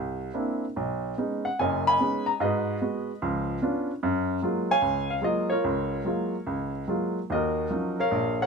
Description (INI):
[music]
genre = solo jazz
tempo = 147 BPM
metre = 4/4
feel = swing 66% on 8ths, rubato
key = F# major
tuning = A4 = 438 Hz
[part]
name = warm baby grand piano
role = solo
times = 0.0-8.5 s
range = F#1 to B5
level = -25 LUFS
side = equal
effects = none
[sound]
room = moderate small room reverb, RT60 0.6 s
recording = none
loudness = -25 LUFS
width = side -5 dB against mid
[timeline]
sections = 0.0-7.3 A section; 7.3-8.5 B section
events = none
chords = 0.0 C9; 0.8 B69; 2.4 G#m7; 3.2 C#7b9; 4.0 F#maj9; 7.3 Ebm9